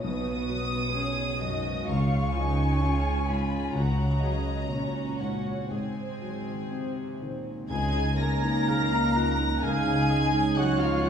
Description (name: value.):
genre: cinematic, emotional film score for orchestra.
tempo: 59-66 BPM.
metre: 4/4.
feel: rubato.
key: unclear.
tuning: A4 = 441 Hz.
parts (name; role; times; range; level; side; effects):
warm symphonic violin section; melody; 0.0-11.1 s; F#5 to Bb6; -35 LUFS; left 1 dB; none.
dark chamber violin section; second line; 0.0-11.1 s; B4 to Bb5; -34 LUFS; left 3 dB; none.
clear chamber viola section; accompaniment; 0.0-11.1 s; F#3 to Bb4; -35 LUFS; right 2 dB; none.
warm grand piano; accompaniment; 0.0-11.1 s; B1 to Ab4; -32 LUFS; left 1 dB; none.
concert harp; arpeggios; 0.0-11.1 s; G#2 to F#5; -34 LUFS; left 2 dB; none.
rich symphonic cello section; bass; 0.0-11.1 s; G#2 to Bb3; -34 LUFS; right 2 dB; none.
warm chamber double bass section; bass; 0.0-11.1 s; G#1 to C#2; -31 LUFS; right 2 dB; none.
small flute group; second line; 7.7-11.1 s; F5 to Bb5; -34 LUFS; equal; none.
warm oboe; second line; 7.7-11.1 s; Db5 to Ab5; -34 LUFS; right 2 dB; none.
dark French horn section; sustained chords; 7.7-11.1 s; Db4 to Eb4; -30 LUFS; right 3 dB; none.
room: wet recital hall reverb, RT60 1.4 s.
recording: heard from further back in the room, small room reverb.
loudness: -24 LUFS.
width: side -8 dB against mid.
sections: 0.0-7.7 A section; 7.7-11.1 B section.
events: none.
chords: 0.0 Bsus2; 1.9 C#; 3.7 F#add9/C#; 5.7 G#7; 7.7 Dbsus2.